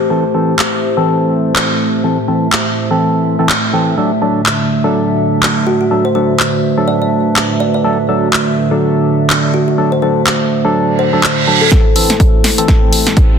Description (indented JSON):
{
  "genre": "bass house",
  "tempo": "124 BPM",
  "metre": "4/4",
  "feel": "swing 58% on 16ths",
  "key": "A dorian",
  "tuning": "A4 = 440 Hz",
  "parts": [
    { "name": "dark analog pad", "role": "sustained chords", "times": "0.0-13.4 s", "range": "A3 to D5", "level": "-19 LUFS", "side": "right 4 dB", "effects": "wide subtle chorus, sidechain pumping" },
    { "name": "percussive organ stab", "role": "stabs", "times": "0.0-13.4 s", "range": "E3 to A4", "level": "-16 LUFS", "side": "left 1 dB", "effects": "chorus, sidechain pumping, ping-pong delay" },
    { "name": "downlifter, reverse cymbal and riser", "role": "sound effects", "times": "0.0-0.1, 11.0-13.4 s", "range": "none", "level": "-17 LUFS", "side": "right 7 dB", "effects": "none" },
    { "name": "warbly tape-like pad", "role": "texture", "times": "0.0-13.4 s", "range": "D3 to E5", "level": "-18 LUFS", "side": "right 1 dB", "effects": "chorus, built-in reverb, sidechain pumping" },
    { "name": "house drum kit", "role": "drums", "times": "0.6-13.3 s", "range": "handclaps, hi-hat, snare drum", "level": "-16 LUFS", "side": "equal", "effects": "soft clipping on snare" },
    { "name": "kalimba", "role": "melody", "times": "5.7-11.8 s", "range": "F#4 to D5", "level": "-18 LUFS", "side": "left 3 dB", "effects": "ping-pong delay" },
    { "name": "electronic kick drum", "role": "drums", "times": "11.7-13.3 s", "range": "none", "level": "-10 LUFS", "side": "equal", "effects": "none" }
  ],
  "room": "moderate plate reverb, RT60 1.5 s",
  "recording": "dense, heavily limited modern master",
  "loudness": "-10 LUFS",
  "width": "side -7 dB against mid",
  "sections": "0.0-11.7 A section; 11.7-13.4 B section",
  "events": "filter sweep on synth stab 0.0-11.7; filter sweep on analog synth pad 0.0-11.7; reverse cymbal 11.0-11.7; build-up 11.7-13.4; drum fill 11.7-13.4; riser 11.7-13.4",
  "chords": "0.0 Am; 4.0 D; 11.7 Am",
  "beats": "| 0.10 0.59 1.07 1.55 | 2.04 2.52 3.01 3.49 | 3.97 4.46 4.94 5.43 | 5.91 6.39 6.88 7.36 | 7.84 8.33 8.81 9.30 | 9.78 10.27 10.75 11.23 | 11.72 12.20 12.68 13.17"
}